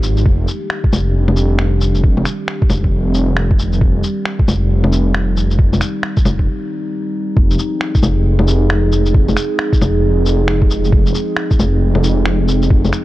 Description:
future garage; 135 BPM; 4/4; swing 62% on 16ths; F dorian; A4 = 440 Hz
warbly tape-like pad; sustained chords; 0.0-13.0 s; Eb3 to Ab4; -20 LUFS; right 1 dB; chorus, built-in reverb, sidechain pumping
swelling detuned saw bass; bass; 0.0-12.9 s; F1 to Ab1; -15 LUFS; equal; sidechain pumping
electronic shaker, finger snaps and bongos; drums; 0.0-13.0 s; -20 LUFS; left 1 dB
electronic kick drum; drums; 0.3-12.8 s; -13 LUFS; equal
digital ambience; dark, warm production; -12 LUFS; side -16 dB against mid
0.0-7.4 A section; 7.4-13.0 B section
break 6.5-7.4
0.3 Cmadd9/F; 7.4 Fm7

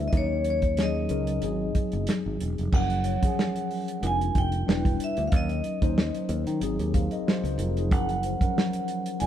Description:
lush 1970s-style soul; 93 BPM; 4/4; swing 54% on 16ths; Gb lydian; A4 = 440 Hz
vibraphone with medium hard mallets; melody; 0.0-9.3 s; Db5 to Ab5; -30 LUFS; right 1 dB
mellow tine electric piano; accompaniment; 0.0-9.3 s; F3 to F5; -30 LUFS; left 2 dB; medium stereo tremolo
fingered electric bass; bass; 0.0-9.3 s; Fb1 to Eb3; -29 LUFS; equal
warm soul drum kit; drums; 0.1-9.3 s; crash cymbal, hi-hat, kick drum, snare drum; -26 LUFS; right 1 dB
celesta; texture; 3.0-4.2, 8.2-9.3 s; C5 to Ab5; -40 LUFS; left 2 dB
light reverb; band playing live in one room; -24 LUFS; side -10 dB against mid
0.0-2.7 A section; 2.7-9.3 B section
0.1 Ebm7; 1.4 Ab7; 2.7 Gbmaj7; 4.0 Bb7/F; 4.7 Em7; 5.3 Ebm7; 6.6 Ab7; 7.9 Gbmaj7

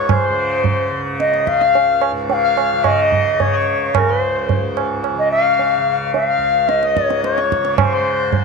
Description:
indian classical, Hindustani; 109 BPM; 7/4; straight; Db raga yaman; A4 = 439 Hz
reedy bansuri; melody; 0.0-8.4 s; C5 to G5; -17 LUFS; left 2 dB; tape echo
pedal harmonium; second line; 0.0-8.4 s; C5 to F5; -24 LUFS; left 11 dB
tanpura; drone; 0.0-8.4 s; Db2 to Db3; -23 LUFS; equal
tabla; percussion; 0.1-8.4 s; -19 LUFS; right 6 dB
moderate echo chamber reverb, RT60 2.3 s; 1960s-style stereo with parts hard left and right, lossy compression artefacts; -14 LUFS; side -4 dB against mid
0.0-7.8 A section

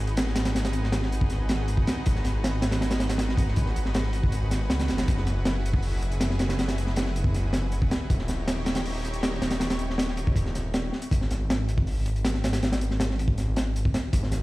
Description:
drum and bass, jungle; 159 BPM; 4/4; straight; G# minor; A4 = 441 Hz
lush unison pad; sustained chords; 0.0-11.1 s; D#4 to C#5; -36 LUFS; equal; chorus, vintage 12-bit sampler grit
detuned saw bass; bass; 0.0-14.4 s; D#1 to C#2; -27 LUFS; equal
crunchy breakbeat drum kit; drums; 0.1-14.4 s; hi-hat, kick drum, snare drum; -26 LUFS; equal
little or no reverb; played on a big sound system in a bare room, stone room reverb; -23 LUFS; side -19 dB against mid
0.0-11.1 A section; 11.1-14.4 A section
drop 0.0-11.1, 11.1-14.4
0.0 G#m7; 5.1 F#9sus4; 8.1 D#7b9; 11.1 N.C.

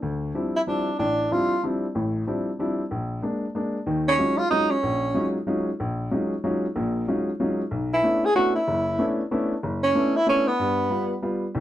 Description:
jazz; 188 BPM; 3/4; swing 63% on 8ths; A4 = 440 Hz
clear upright piano; accompaniment; 0.0-11.6 s; F#1 to F4; -25 LUFS; left 1 dB
mellow tenor saxophone; melody; 0.6-1.6, 4.1-5.3, 7.9-11.2 s; B3 to Ab4; -22 LUFS; right 1 dB
light reverb; dry, close 1970s-style studio recording; -22 LUFS; side -12 dB against mid
0.0-3.9 A section; 3.9-11.5 B section
0.0 Dm11; 2.9 Bb7; 3.9 Ebm11; 7.7 Bm11; 10.6 G7

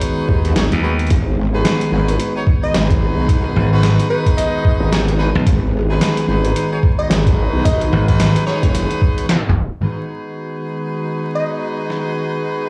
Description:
glitch hop; 110 BPM; 4/4; swing 58% on 16ths; G# minor pentatonic; A4 = 445 Hz
warbly tape-like pad; sustained chords; 0.0-12.7 s; D#3 to B4; -26 LUFS; equal; chorus, built-in reverb, vintage 12-bit sampler grit, sidechain pumping
clear horn section; stabs; 0.0-12.7 s; D#4 to C#5; -25 LUFS; equal; sidechain pumping, tape echo
boom bap sampler-style drum kit; drums; 0.0-12.0 s; hi-hat, snare drum; -23 LUFS; equal
growl bass; bass; 0.3-8.9 s; F#1 to D#2; -20 LUFS; equal; chorus, tube saturation
electronic kick drum; drums; 0.3-9.1 s; -18 LUFS; equal
glassy slap bass; bass; 0.7-9.8 s; G#1 to D#2; -17 LUFS; equal
plucky unison lead; melody; 2.6-11.5 s; B4 to D#5; -27 LUFS; equal; vintage 12-bit sampler grit, tape echo
light reverb; played on a big sound system in a bare room, stone room reverb, vinyl crackle, tape stop, studio ambience; -17 LUFS; mono
0.0-9.8 A section; 9.8-12.7 B section
tape stop 9.3-9.8
0.0 G#m7

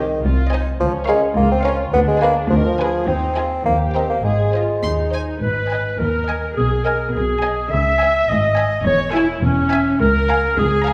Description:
cinematic; 105 BPM; 2/4; straight; Ab major, G# minor from 5.4 s; A4 = 439 Hz
rich chamber violin section; melody; 0.0-10.9 s; F5 to C6; -34 LUFS; equal
rich chamber violin section; second line; 0.0-10.9 s; Ab4 to G#5; -30 LUFS; equal
rich chamber viola section; accompaniment; 0.0-10.9 s; Db4 to E5; -28 LUFS; equal
warm bassoon; accompaniment; 0.0-5.1 s; Eb3 to Db4; -21 LUFS; equal
rich chamber cello section; bass; 0.0-10.9 s; C2 to C#3; -26 LUFS; equal
warm studio double bass section; bass; 0.0-10.9 s; E1 to Eb2; -25 LUFS; equal
mellow clarinet; second line; 4.5-10.9 s; C#4 to E5; -22 LUFS; equal
wet recital hall reverb, RT60 1.6 s; -18 LUFS; mono
0.0-5.4 A section; 5.4-10.9 B section
0.0 Ab/C; 0.8 Bbm/Db; 1.9 Ddim7; 3.1 Ab/Eb; 3.7 Eb; 4.2 Ab; 5.4 G#m; 6.6 G#m/B; 7.7 C#m; 8.9 C#m/E; 10.0 Bbm7/Db

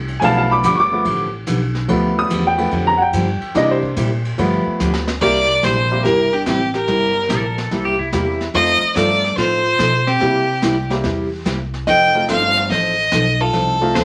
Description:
country, western swing; 144 BPM; 4/4; swing 67% on 8ths; C major; A4 = 440 Hz
upright bass; bass; 0.0-14.0 s; F1 to C3; -25 LUFS; equal
vintage brush drum kit; drums; 0.1-14.0 s; brushed snare drum, crash cymbal, hi-hat, kick drum, ride cymbal, snare drum; -31 LUFS; equal
clear upright piano; accompaniment; 0.2-14.0 s; E3 to Eb6; -21 LUFS; equal
picked steel-string acoustic guitar; accompaniment; 0.2-14.0 s; C3 to A4; -25 LUFS; equal
clear fiddle; melody; 5.2-14.0 s; G4 to G5; -19 LUFS; equal
hollow-body jazz guitar; second line; 5.2-14.0 s; C4 to Eb5; -26 LUFS; equal
pedal steel guitar; second line; 7.3-8.5, 14.0 s; E4 to C5; -26 LUFS; equal
wet studio reverb, RT60 0.6 s; vinyl crackle; -17 LUFS; mono
0.0-5.2 A section; 5.2-14.0 B section
upright piano solo 0.0-5.2; drum fill 4.8-5.2
0.0 G7; 3.6 C7; 4.4 G7; 5.2 C7; 8.5 F7; 10.2 C7; 11.9 F7

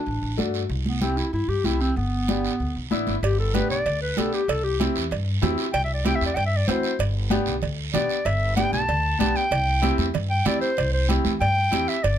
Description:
latin, cumbia; 190 BPM; 4/4; straight; A4 = 440 Hz
warm clarinet; melody; 0.0-12.2 s; B3 to A5; -25 LUFS; left 1 dB
upright bass; bass; 0.1-12.2 s; G1 to G2; -26 LUFS; equal
congas; percussion; 0.1-11.9 s; -28 LUFS; right 4 dB
guiro; percussion; 0.1-12.2 s; -34 LUFS; right 8 dB
warm upright piano; accompaniment; 0.4-11.9 s; A3 to G4; -27 LUFS; left 2 dB
cowbell and timbales; percussion; 3.2-12.2 s; -30 LUFS; right 8 dB
little or no reverb; close, detailed microphones; -21 LUFS; side -10 dB against mid
0.0-3.2 A section; 3.2-12.2 B section
clarinet solo 3.2-12.2
0.0 D; 0.7 C; 2.0 G; 4.5 C; 7.0 G; 9.5 C

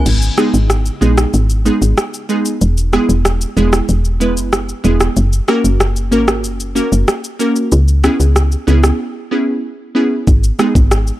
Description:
dancehall; 94 BPM; 4/4; straight; G# minor; A4 = 440 Hz
woody FM bass; bass; 0.1-11.1 s; E1 to C#2; -13 LUFS; equal
afro-pop drum kit; drums; 0.1-11.2 s; crash cymbal, kick drum, rim click, shaker; -16 LUFS; equal
glassy wavetable pluck; accompaniment; 0.4-10.7 s; G#3 to B4; -17 LUFS; right 1 dB; chorus
little or no reverb; dry, gritty hardware recording, cassette tape; -12 LUFS; side -15 dB against mid
0.1-11.2 A section
break 0.1-10.3
0.1 G#m; 2.6 E; 5.2 F#; 7.7 C#m7; 10.3 G#m

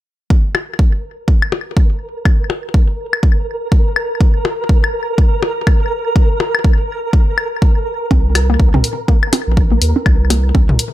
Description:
minimal techno; 123 BPM; 4/4; swing 60% on 16ths; A4 = 440 Hz
electronic kick drum; drums; 0.3-10.7 s; -12 LUFS; equal; overdrive, studio reverb
flickering grainy texture; texture; 1.7-10.9 s; Bb4; -23 LUFS; right 1 dB; built-in reverb, sidechain pumping
electronic percussion blips, claves and toms; percussion; 0.5-10.8 s; -18 LUFS; left 5 dB; studio reverb, ping-pong delay
hollow square pluck; riff; 8.1-10.6 s; Bb3 to C4; -20 LUFS; right 1 dB; chorus, sidechain pumping, ping-pong delay
saturated sub bass; bass; 8.1-10.8 s; Bb1 to Eb2; -15 LUFS; equal; sidechain pumping
electronic hi-hat; drums; 8.4-10.9 s; -18 LUFS; left 2 dB; overdrive, low-pass filter on hats, studio reverb
little or no reverb; -12 LUFS; side -14 dB against mid
0.3-10.9 A section
0.3 C7(no3)

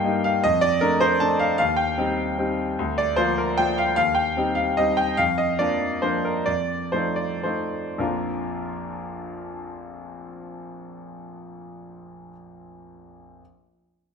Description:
classical, piano waltz; 104-161 BPM; 3/4; rubato; Bb major; A4 = 440 Hz
bright grand piano; solo; 0.0-13.4 s; Bb1 to A5; -22 LUFS; equal
moderate recital hall reverb, RT60 1.3 s; close, detailed microphones; -20 LUFS; side -6 dB against mid
0.0-8.0 A section; 8.0-11.3 B section
slowing down 4.6-8.0
0.4 Dm/F; 1.6 Cm/Eb; 2.8 Bb/D; 4.0 Cm/Eb; 5.2 Bb/F; 6.5 F7; 8.0 Bb

